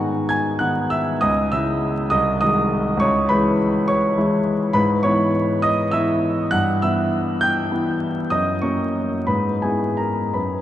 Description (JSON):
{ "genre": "classical, romantic character piece for solo piano", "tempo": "56-70 BPM (dotted quarters)", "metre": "6/8", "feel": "rubato", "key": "unclear", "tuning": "A4 = 439 Hz", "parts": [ { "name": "warm grand piano", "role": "solo", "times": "0.0-10.6 s", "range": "B#1 to G#6", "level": "-18 LUFS", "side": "equal", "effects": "none" } ], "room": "wet cathedral reverb, RT60 6.5 s", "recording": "in a vast, echoing space, vinyl crackle, nothing above 10.7 kHz", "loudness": "-17 LUFS", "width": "side -12 dB against mid", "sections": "0.0-10.6 A section", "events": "none", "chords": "0.0 G#m; 1.2 C#m; 2.1 G#7/B#; 3.0 C#m7; 4.8 E/G#; 6.5 Em/G; 8.3 F#; 9.3 E/G#", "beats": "0.29 | 1.22 2.12 | 3.02 3.90 | 4.76 5.63 | 6.52 7.41 | 8.31 9.29 | 10.34" }